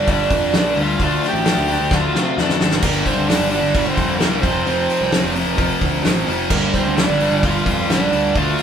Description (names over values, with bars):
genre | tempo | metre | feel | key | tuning
quiet-loud alternative rock | 130 BPM | 4/4 | straight | unclear | A4 = 440 Hz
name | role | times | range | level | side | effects
octave-fuzz lead guitar | melody | 0.0-8.6 s | Bb3 to G4 | -21 LUFS | right 4 dB | distortion
thick fuzz guitar | riff | 0.0-8.6 s | F2 to D4 | -20 LUFS | left 4 dB | distortion
fuzz picked electric bass | bass | 0.0-8.5 s | F1 to C3 | -24 LUFS | equal | overdrive
loose indie drum kit | drums | 0.1-8.6 s | crash cymbal, hi-hat, kick drum, snare drum | -21 LUFS | equal | none
crunchy overdriven guitar | riff | 2.8-8.6 s | F2 to D4 | -23 LUFS | right 5 dB | none
room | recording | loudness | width
moderate studio reverb, RT60 0.6 s | band playing live in one room | -15 LUFS | side -8 dB against mid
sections
0.0-8.6 A section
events
drum fill 1.9-2.8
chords
0.0 Gm7; 1.0 Dm7; 2.8 G5; 4.4 F5; 6.5 G7(no3)